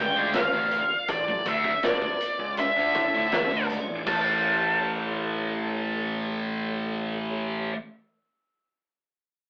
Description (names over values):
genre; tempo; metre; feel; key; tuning
psychedelic rock; 80 BPM; 4/4; straight; unclear; A4 = 441 Hz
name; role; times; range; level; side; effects
octave-fuzz lead guitar; melody; 0.0-7.7 s; D5 to A5; -28 LUFS; equal; distortion
tonewheel organ; sustained chords; 0.0-7.7 s; D4 to D5; -40 LUFS; equal; slow rotary speaker, chorus vibrato
thick fuzz guitar; riff; 0.0-7.7 s; A2 to D4; -32 LUFS; equal; distortion, phaser
fuzz picked electric bass; bass; 0.0-7.7 s; A1 to A2; -36 LUFS; equal; overdrive
vintage drum kit; drums; 0.3-4.2 s; crash cymbal, hi-hat, kick drum, snare drum; -33 LUFS; equal; none
room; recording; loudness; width
moderate small room reverb, RT60 0.5 s; rough rehearsal-room recording, AM radio sound; -26 LUFS; mono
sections
0.0-4.1 A section; 4.1-7.1 B section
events
none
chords
0.0 Dmadd9/A; 4.1 A7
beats
0.34 | 1.09 1.83 2.58 3.32 | 4.07 4.81 5.56 6.30